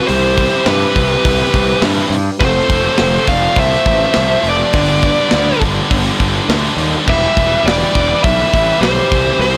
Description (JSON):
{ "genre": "heavy metal", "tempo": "103 BPM", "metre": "4/4", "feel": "straight", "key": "E phrygian", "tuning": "A4 = 440 Hz", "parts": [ { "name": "high-gain lead guitar", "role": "melody", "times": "0.0-9.6 s", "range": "B4 to F5", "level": "-18 LUFS", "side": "equal", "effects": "distortion" }, { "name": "high-gain lead guitar", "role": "second line", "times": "0.0-9.6 s", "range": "G4 to D5", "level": "-26 LUFS", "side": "equal", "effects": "distortion" }, { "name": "high-gain distorted guitar", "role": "riff", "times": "0.0-9.6 s", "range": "G2 to A3", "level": "-22 LUFS", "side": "equal", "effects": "distortion" }, { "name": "scooped high-gain guitar", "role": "riff", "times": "0.0-9.6 s", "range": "F2 to G3", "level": "-24 LUFS", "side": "equal", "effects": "distortion" }, { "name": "fuzz picked electric bass", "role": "bass", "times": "0.1-9.6 s", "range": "E1 to G2", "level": "-20 LUFS", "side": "equal", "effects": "overdrive, tube saturation" }, { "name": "tight metal drum kit", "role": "drums", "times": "0.1-9.5 s", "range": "crash cymbal, hi-hat, kick drum, snare drum", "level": "-21 LUFS", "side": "equal", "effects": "none" } ], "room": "light reverb, small room reverb", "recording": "blown-out, overdriven recording, overdrive", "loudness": "-13 LUFS", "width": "mono", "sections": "0.0-9.6 A section", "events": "none", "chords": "0.0 C; 2.4 F; 4.7 G; 7.1 Em", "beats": "| 0.09 0.67 1.25 1.83 | 2.41 3.00 3.58 4.16 | 4.74 5.32 5.91 6.49 | 7.07 7.65 8.23 8.82 | 9.40" }